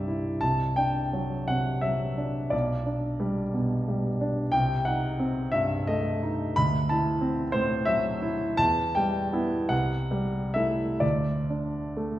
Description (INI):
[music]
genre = classical, romantic nocturne for solo piano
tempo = 41-63 BPM (dotted quarters)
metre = 6/8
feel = rubato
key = unclear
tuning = A4 = 440 Hz
[part]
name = warm grand piano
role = solo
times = 0.0-12.2 s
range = B1 to B5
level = -24 LUFS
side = equal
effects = none
[sound]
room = wet recital hall reverb, RT60 1.4 s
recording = heard from further back in the room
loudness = -24 LUFS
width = side -14 dB against mid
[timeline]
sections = 0.0-12.2 A section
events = none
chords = 0.4 D7/C; 2.5 G/B; 4.5 Am7b5/C; 6.6 D9; 8.6 Em; 9.7 Am7/C; 11.0 D5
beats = | 0.43 1.49 | 2.53 3.55 | 4.54 5.54 | 6.57 7.54 | 8.59 9.72 | 11.02